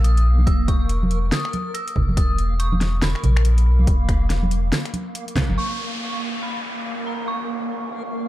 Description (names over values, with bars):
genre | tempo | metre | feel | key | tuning
deep dubstep | 141 BPM | 4/4 | swing 61% on 16ths, half-time | unclear | A4 = 440 Hz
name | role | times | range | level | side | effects
dark detuned synth bell | melody | 0.0-8.3 s | Bb5 to E6 | -31 LUFS | right 1 dB | chorus, phaser, dub echo
soft dub sub bass | bass | 0.0-5.6 s | E1 to B1 | -18 LUFS | equal | none
deep house drum kit | drums | 0.0-5.5 s | finger snaps, hi-hat, snare drum | -26 LUFS | equal | overdrive, small room ambience
backwards swelling texture | texture | 0.0-8.3 s | Bb3 | -30 LUFS | equal | built-in reverb
congas | percussion | 0.4-5.6 s | none | -28 LUFS | right 2 dB | none
electronic kick drum | drums | 0.5-5.5 s | none | -21 LUFS | equal | overdrive, small room ambience
downlifter | sound effects | 5.6-8.3 s | none | -30 LUFS | equal | none
room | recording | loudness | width
little or no reverb | dark, warm production | -18 LUFS | side -15 dB against mid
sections
0.0-5.6 A section; 5.6-8.3 B section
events
drum fill 5.4; band accent 5.4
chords
0.0 E5; 5.6 N.C.